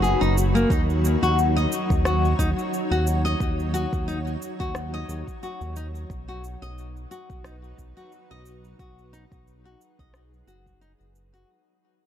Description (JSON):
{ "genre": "organic downtempo", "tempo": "89 BPM", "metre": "4/4", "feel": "swing 55% on 16ths", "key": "unclear", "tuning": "A4 = 440 Hz", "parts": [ { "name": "granular cloud pad", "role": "sustained chords", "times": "0.0-11.5 s", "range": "F#3 to B5", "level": "-30 LUFS", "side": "equal", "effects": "built-in reverb, sidechain pumping" }, { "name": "nylon-string guitar", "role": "arpeggios", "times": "0.0-11.5 s", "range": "A#3 to Eb5", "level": "-26 LUFS", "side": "left 2 dB", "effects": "vintage 12-bit sampler grit, ping-pong delay" }, { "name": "smooth synth bass", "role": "bass", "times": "0.0-11.4 s", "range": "F#1 to Eb2", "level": "-25 LUFS", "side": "equal", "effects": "sidechain pumping" }, { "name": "electronic cabasa and rim click", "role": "drums", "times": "0.0-11.5 s", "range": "none", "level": "-35 LUFS", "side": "right 1 dB", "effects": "none" }, { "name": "electronic kick drum", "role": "drums", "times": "0.7-10.8 s", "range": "none", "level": "-27 LUFS", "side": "equal", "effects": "none" } ], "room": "light reverb, small room ambience", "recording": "dark, warm production", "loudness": "-21 LUFS", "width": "side -10 dB against mid", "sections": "0.0-11.5 A section", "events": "fade-out 0.0-11.5", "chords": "0.0 Bmaj7; 0.7 Ebm7; 6.1 B" }